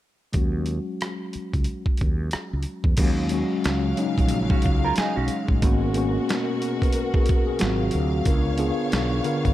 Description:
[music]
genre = R&B, neo-soul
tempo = 91 BPM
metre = 4/4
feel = swing 58% on 16ths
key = Eb minor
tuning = A4 = 440 Hz
[part]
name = mellow tine electric piano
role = accompaniment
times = 0.3-9.5 s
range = D3 to Cb5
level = -26 LUFS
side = left 2 dB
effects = medium stereo tremolo
[part]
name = boom bap sampler-style drum kit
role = drums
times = 0.3-9.5 s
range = crash cymbal, hi-hat, kick drum, rim click, snare drum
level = -24 LUFS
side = equal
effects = none
[part]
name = mellow fretless electric bass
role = bass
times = 0.4-9.5 s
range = Ab1 to Fb2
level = -26 LUFS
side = equal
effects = none
[part]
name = warm studio string section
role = sustained chords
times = 3.0-9.5 s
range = Cb3 to F5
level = -30 LUFS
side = equal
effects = none
[part]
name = hollow-body jazz guitar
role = second line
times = 4.5-5.6 s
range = Db4 to Bb4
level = -28 LUFS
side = right 4 dB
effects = none
[sound]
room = little or no reverb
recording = none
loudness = -21 LUFS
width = side -14 dB against mid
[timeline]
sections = 0.3-3.0 A section; 3.0-9.5 B section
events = none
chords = 0.3 Ebm7; 3.0 Ebm11; 5.6 Abm9; 7.6 Ab13; 8.3 Db7b9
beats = | 0.35 1.01 1.67 2.33 | 2.99 3.65 4.31 4.96 | 5.62 6.28 6.94 7.60 | 8.26 8.92

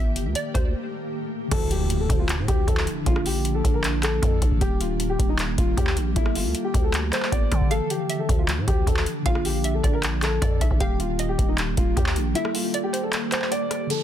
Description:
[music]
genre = hip hop, trap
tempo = 155 BPM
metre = 4/4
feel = half-time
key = unclear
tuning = A4 = 437 Hz
[part]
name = hollow square pluck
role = second line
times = 0.0-0.7, 7.7-13.1 s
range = C5 to F5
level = -33 LUFS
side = right 4 dB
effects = chorus, tape echo
[part]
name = ethereal airy pad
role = sustained chords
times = 0.0-14.0 s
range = D3 to A4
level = -33 LUFS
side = equal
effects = ensemble chorus, built-in reverb, tremolo, low-pass filter
[part]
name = growling 808-style bass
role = bass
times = 0.0-12.3 s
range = Eb1 to D3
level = -26 LUFS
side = equal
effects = none
[part]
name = booming analog drum machine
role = drums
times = 0.2-14.0 s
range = crash cymbal, handclaps, hi-hat, kick drum, rim click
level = -23 LUFS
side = equal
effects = none
[part]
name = dark grand piano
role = melody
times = 1.5-14.0 s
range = Eb4 to D5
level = -28 LUFS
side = left 2 dB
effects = low-pass filter, tape echo
[part]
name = mellow tine electric piano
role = accompaniment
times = 1.5-14.0 s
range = D3 to A4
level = -31 LUFS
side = left 1 dB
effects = medium stereo tremolo, low-pass filter
[part]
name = impact and downlifter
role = sound effects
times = 1.5-3.1, 13.9-14.0 s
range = none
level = -32 LUFS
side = equal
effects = none
[sound]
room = little or no reverb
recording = dense, heavily limited modern master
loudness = -21 LUFS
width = side -10 dB against mid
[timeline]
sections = 0.0-1.5 A section; 1.5-13.9 B section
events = break 0.7-1.5, 7.7-8.1; impact 1.5-3.1; kick muted 12.4-13.9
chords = 0.0 Gmadd9; 1.5 Dmadd9; 3.1 Bb; 4.6 Eb; 6.2 Gmadd9; 7.7 Dmadd9; 9.3 Bb; 10.8 Eb; 12.4 Gmadd9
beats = 0.35 0.74 1.13 | 1.51 1.90 2.29 2.68 | 3.06 3.45 3.84 4.22 | 4.61 5.00 5.39 5.77 | 6.16 6.55 6.93 7.32 | 7.71 8.10 8.48 8.87 | 9.26 9.64 10.03 10.42 | 10.80 11.19 11.58 11.97 | 12.35 12.74 13.13 13.52 | 13.90

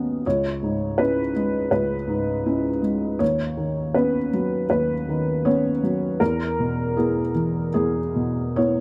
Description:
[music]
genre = neoclassical minimalist piano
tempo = 80 BPM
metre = 4/4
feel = rubato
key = B major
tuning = A4 = 439 Hz
[part]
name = felt-muted upright piano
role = solo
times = 0.0-8.8 s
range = C#2 to D#5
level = -23 LUFS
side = equal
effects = none
[sound]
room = light reverb, small room ambience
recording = dry, close 1970s-style studio recording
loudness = -23 LUFS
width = mono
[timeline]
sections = 0.0-8.8 A section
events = none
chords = 0.2 C#m7; 3.2 Badd9/D#; 6.2 E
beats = | 0.24 0.98 1.71 2.46 | 3.21 3.95 4.70 5.45 | 6.20 6.96 7.73 8.56

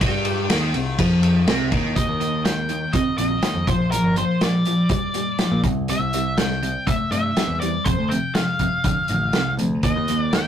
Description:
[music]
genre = classic rock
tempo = 122 BPM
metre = 4/4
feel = straight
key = unclear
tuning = A4 = 440 Hz
[part]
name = biting overdriven guitar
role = riff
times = 0.0-10.5 s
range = F2 to C4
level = -23 LUFS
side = equal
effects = none
[part]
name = modern bright picked electric bass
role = bass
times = 0.0-10.5 s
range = G1 to Bb2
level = -25 LUFS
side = equal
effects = none
[part]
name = vintage drum kit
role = drums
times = 0.0-10.4 s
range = hi-hat, kick drum, ride cymbal, snare drum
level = -23 LUFS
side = equal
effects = none
[part]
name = octave-fuzz lead guitar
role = melody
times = 2.0-10.5 s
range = Bb4 to G5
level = -25 LUFS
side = left 1 dB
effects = distortion
[sound]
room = wet booth ambience, RT60 0.2 s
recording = rough rehearsal-room recording, tube saturation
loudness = -18 LUFS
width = side -9 dB against mid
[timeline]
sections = 0.0-2.0 A section; 2.0-10.5 B section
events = none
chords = 0.0 C5; 2.0 Eb; 3.7 Bb; 5.6 C; 7.9 F5; 9.8 Eb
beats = | 0.01 0.50 0.99 1.48 | 1.97 2.46 2.95 3.44 | 3.93 4.42 4.91 5.40 | 5.89 6.39 6.88 7.37 | 7.86 8.35 8.85 9.34 | 9.83 10.32

